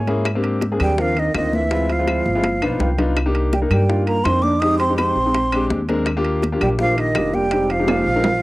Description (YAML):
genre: Afro-Cuban jazz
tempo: 165 BPM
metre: 4/4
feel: straight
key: Eb major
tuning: A4 = 440 Hz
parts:
  - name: breathy jazz flute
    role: melody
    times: 0.0-8.4 s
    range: Eb5 to Eb6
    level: -22 LUFS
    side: right 1 dB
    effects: cassette tape
  - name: mellow trombone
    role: second line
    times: 0.0-8.4 s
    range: Eb3 to Eb4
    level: -22 LUFS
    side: right 2 dB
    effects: cassette tape
  - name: warm concert grand piano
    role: accompaniment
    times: 0.0-8.2 s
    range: Ab3 to G5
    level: -22 LUFS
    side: left 2 dB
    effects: cassette tape
  - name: upright bass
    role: bass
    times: 0.0-8.4 s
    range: F1 to Ab2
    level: -22 LUFS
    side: equal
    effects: none
  - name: bongos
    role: percussion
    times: 0.1-8.4 s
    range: none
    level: -27 LUFS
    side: left 4 dB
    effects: none
  - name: congas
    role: percussion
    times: 0.1-8.3 s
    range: none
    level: -28 LUFS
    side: equal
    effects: none
  - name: timbales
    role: percussion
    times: 0.1-8.3 s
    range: none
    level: -28 LUFS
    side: right 4 dB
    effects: none
  - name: claves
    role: percussion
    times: 0.3-8.1 s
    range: none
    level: -30 LUFS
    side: left 5 dB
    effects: none
room: light reverb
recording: home recording on cassette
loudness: -16 LUFS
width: side -19 dB against mid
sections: 0.0-8.4 A section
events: grand piano fill 0.0, 2.6-3.2; drum fill 2.3-3.2, 7.9-8.4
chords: 0.3 Abmaj9#11; 1.7 Dm7b5; 2.4 G7b13; 3.2 Cm9; 4.6 Fm7; 5.3 Bb13; 6.1 Ebmaj7; 7.5 Fm7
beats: | 0.26 0.62 0.98 1.35 | 1.71 2.07 2.44 2.80 | 3.16 3.53 3.89 4.25 | 4.62 4.98 5.34 5.71 | 6.07 6.43 6.80 7.16 | 7.52 7.89 8.25